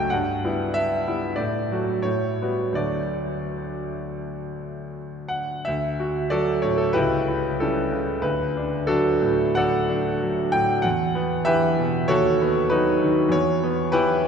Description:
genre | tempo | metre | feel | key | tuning
classical, romantic character piece for solo piano | 81-99 BPM | 4/4 | rubato | D major | A4 = 440 Hz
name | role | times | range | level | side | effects
bright grand piano | solo | 0.0-14.3 s | C#2 to A5 | -21 LUFS | equal | none
room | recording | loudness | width
wet cathedral reverb, RT60 4.9 s | recorded in a church or concert hall | -20 LUFS | side -6 dB against mid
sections
0.0-5.7 A section; 5.7-14.3 A section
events
none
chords
0.1 Em/G; 1.4 D/A; 2.0 A13; 2.8 D; 7.0 A7/C#; 8.3 D; 10.8 Em; 12.1 B7/D#; 13.3 Em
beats
| 0.10 0.74 1.38 2.05 | 2.76 3.50 4.24 4.96 | 5.67 6.33 6.96 7.61 | 8.25 8.89 9.57 10.22 | 10.84 11.46 12.09 12.71 | 13.32 13.94

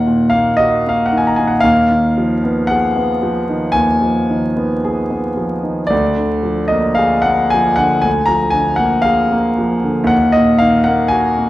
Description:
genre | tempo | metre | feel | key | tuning
classical, romantic nocturne for solo piano | 54-60 BPM | 4/4 | rubato | Eb minor | A4 = 440 Hz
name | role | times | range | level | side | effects
warm concert grand piano | solo | 0.0-11.5 s | D2 to Bb5 | -12 LUFS | equal | none
room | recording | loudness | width
wet recital hall reverb, RT60 1.4 s | vinyl crackle | -12 LUFS | side -15 dB against mid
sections
0.0-11.5 A section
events
none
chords
0.0 Ebm; 1.6 Fm7b5/Eb; 5.9 Bb7/D; 10.1 Ebm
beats
0.60 | 1.65 2.72 3.77 4.86 | 5.91 7.00 8.06 9.07 | 10.11 11.13

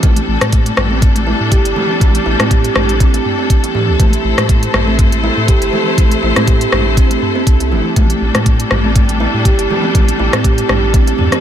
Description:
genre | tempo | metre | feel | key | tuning
afro house | 121 BPM | 4/4 | swing 55% on 16ths | A minor | A4 = 439 Hz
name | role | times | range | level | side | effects
clear symphonic string section | sustained chords | 0.0-11.4 s | G3 to C5 | -19 LUFS | left 4 dB | sidechain pumping
kalimba | arpeggios | 0.0-11.4 s | E3 to G4 | -18 LUFS | right 3 dB | sidechain pumping, ping-pong delay
warm sub bass | bass | 0.0-11.3 s | G1 to A2 | -18 LUFS | equal | sidechain pumping
deep house drum kit | drums | 0.0-11.4 s | hi-hat, rim click, toms | -18 LUFS | left 1 dB | none
electronic kick drum | drums | 0.0-11.0 s | none | -11 LUFS | equal | none
congas | percussion | 0.0-11.3 s | none | -22 LUFS | right 1 dB | none
room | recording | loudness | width
little or no reverb | none | -10 LUFS | side -10 dB against mid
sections
0.0-11.4 A section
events
none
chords
0.0 Am7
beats
| 0.03 0.53 1.02 1.52 | 2.01 2.51 3.00 3.50 | 4.00 4.49 4.99 5.48 | 5.98 6.47 6.97 7.47 | 7.96 8.46 8.96 9.45 | 9.95 10.44 10.94

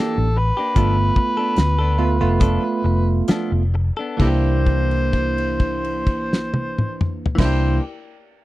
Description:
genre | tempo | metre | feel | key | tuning
straight-eighth soul blues | 64-77 BPM | 4/4 | straight | C mixolydian | A4 = 440 Hz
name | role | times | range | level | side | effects
overdriven harmonica | melody | 0.0-7.8 s | G4 to C5 | -24 LUFS | left 1 dB | none
bell-like tine electric piano | accompaniment | 0.0-7.8 s | A3 to G4 | -24 LUFS | right 6 dB | lush chorus
direct-recorded clean electric guitar | stabs | 0.0-7.8 s | E3 to A4 | -29 LUFS | left 4 dB | spring reverb
vintage muted fingered electric bass | bass | 0.2-7.8 s | F1 to D2 | -19 LUFS | left 1 dB | none
damped 70s drum kit | drums | 0.8-7.6 s | crash cymbal, hi-hat, kick drum, snare drum, toms | -19 LUFS | equal | none
room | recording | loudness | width
little or no reverb | dry, close 1970s-style studio recording | -17 LUFS | side -16 dB against mid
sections
0.0-4.2 A section; 4.2-7.9 B section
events
slowing down 0.0-4.2; held note 4.2-7.4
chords
0.0 C9 (rootless); 0.8 G9 (rootless); 4.2 C9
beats
| 0.76 1.57 2.41 3.29 | 4.20 5.13 6.07 7.00

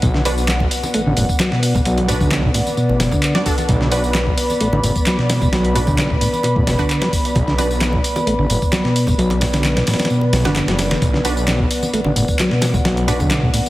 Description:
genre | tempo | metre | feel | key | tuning
breakbeat, breaks | 131 BPM | 4/4 | straight | B minor | A4 = 436 Hz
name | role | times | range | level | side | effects
dark analog pad | sustained chords | 0.0-13.7 s | B3 to B5 | -22 LUFS | left 1 dB | chorus, sidechain pumping
mellow tonewheel organ | riff | 0.0-13.6 s | A2 to A3 | -19 LUFS | equal | slow rotary speaker, vintage 12-bit sampler grit
detuned saw bass | bass | 0.0-13.5 s | F#1 to B1 | -21 LUFS | equal | none
dusty soul sampler-style drum kit | drums | 0.0-13.7 s | hi-hat, kick drum, snare drum | -20 LUFS | equal | none
punchy analog drum machine | drums | 0.0-13.7 s | handclaps, hi-hat, tambourine | -26 LUFS | equal | none
congas | percussion | 0.0-13.7 s | none | -30 LUFS | right 1 dB | none
orchestra-hit-like synth stab | stabs | 0.3-7.7, 10.4-13.2 s | D4 to D5 | -26 LUFS | right 2 dB | built-in reverb, tape echo
room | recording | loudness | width
light reverb | heavily compressed radio sound, multiband compression | -14 LUFS | side -16 dB against mid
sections
0.0-13.7 A section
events
none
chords
0.0 Bm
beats
| 0.03 0.48 0.94 1.40 | 1.86 2.32 2.77 3.23 | 3.69 4.15 4.61 5.06 | 5.52 5.98 6.44 6.90 | 7.35 7.81 8.27 8.73 | 9.19 9.64 10.10 10.56 | 11.02 11.48 11.93 12.39 | 12.85 13.31

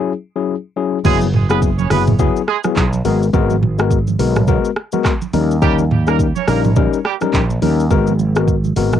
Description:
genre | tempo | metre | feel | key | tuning
afrobeats | 105 BPM | 4/4 | swing 58% on 16ths | G# minor | A4 = 440 Hz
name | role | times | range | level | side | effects
tine electric piano | accompaniment | 0.0-9.0 s | F#3 to A#4 | -18 LUFS | left 9 dB | auto-pan, cassette tape
clear horn section | second line | 1.0-7.2 s | G3 to C#5 | -22 LUFS | right 13 dB | cassette tape, analog delay
fretless electric bass | bass | 1.0-9.0 s | F#1 to D#2 | -17 LUFS | right 1 dB | none
afro-pop drum kit | drums | 1.0-9.0 s | crash cymbal, handclaps, hi-hat, kick drum, rim click, shaker, toms | -18 LUFS | right 2 dB | cassette tape
congas | percussion | 1.1-9.0 s | none | -24 LUFS | right 14 dB | none
room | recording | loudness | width
light reverb | home recording on cassette | -13 LUFS | side -10 dB against mid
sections
0.0-1.1 A section; 1.1-9.0 B section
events
break 0.0-1.1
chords
0.0 E69; 1.1 F#9sus4; 3.0 G#m9; 5.3 D#7; 7.9 G#m9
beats
0.48 | 1.05 1.62 2.19 2.77 | 3.34 3.91 4.48 5.05 | 5.62 6.19 6.76 7.34 | 7.91 8.48

